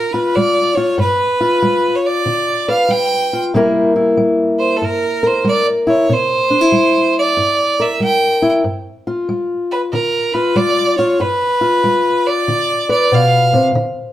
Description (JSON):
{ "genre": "acoustic country blues, solo or duo", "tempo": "94 BPM", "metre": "4/4", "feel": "swing 65% on 8ths", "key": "unclear", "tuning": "A4 = 440 Hz", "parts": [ { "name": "bright fiddle", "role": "melody", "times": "0.0-13.7 s", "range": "A4 to G5", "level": "-15 LUFS", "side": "right 2 dB", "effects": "none" }, { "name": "fingerpicked steel-string acoustic guitar", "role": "accompaniment", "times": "0.0-14.1 s", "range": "G2 to B4", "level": "-16 LUFS", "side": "left 2 dB", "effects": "none" } ], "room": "moderate studio reverb, RT60 0.9 s", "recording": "heard from further back in the room", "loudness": "-12 LUFS", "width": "side -13 dB against mid", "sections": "0.0-14.1 A section", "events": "none", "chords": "0.0 G7; 3.5 C7; 8.6 G7" }